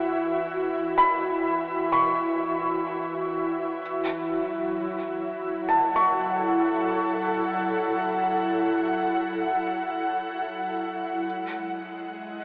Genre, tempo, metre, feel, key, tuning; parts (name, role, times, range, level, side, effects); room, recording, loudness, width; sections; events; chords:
ambient; free time; A4 = 444 Hz
ethereal airy pad; sustained chords; 0.0-12.4 s; E3 to F#5; -28 LUFS; equal; ensemble chorus, built-in reverb, shimmer reverb
felt-muted upright piano; arpeggios; 0.0-11.3 s; A5 to C#6; -29 LUFS; equal; tape echo, shimmer reverb
wet huge ambient reverb, RT60 8.5 s; telephone sound; -26 LUFS; mono
0.0-12.4 A section
fade-out 8.8-12.4
0.0 Esus2; 3.8 F#m7; 11.2 G#7(no3)